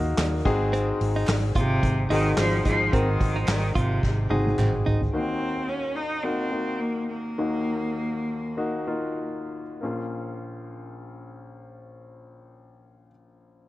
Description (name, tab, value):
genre	piano-driven pop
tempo	93-109 BPM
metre	4/4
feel	swing 56% on 16ths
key	unclear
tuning	A4 = 439 Hz
part	clear baby grand piano	accompaniment	0.0-13.7 s	Bb1 to Bb4	-29 LUFS	left 2 dB	none
part	vintage muted fingered electric bass	bass	0.0-5.1 s	Ab1 to Eb2	-26 LUFS	equal	none
part	soft-mallet drum kit	drums	0.2-5.1 s	crash cymbal, handclaps, hi-hat, kick drum, snare drum, toms	-27 LUFS	equal	none
part	group handclap	percussion	0.2-4.7 s	none	-42 LUFS	right 2 dB	none
part	direct-recorded clean electric guitar	riff	0.7-5.0 s	C4 to F4	-32 LUFS	right 3 dB	none
part	bright cello	melody	1.6-9.1 s	C3 to Eb4	-28 LUFS	equal	none
room	light reverb, small room ambience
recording	worn, warbling old tape, cassette tape, warbly pitch drift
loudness	-23 LUFS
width	side -16 dB against mid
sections	0.0-5.1 A section; 5.1-9.8 B section; 9.8-12.4 C section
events	drum fill 4.0-5.1; slowing down 5.1-9.8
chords	0.5 Ab7; 5.1 Ebm; 9.8 Bbm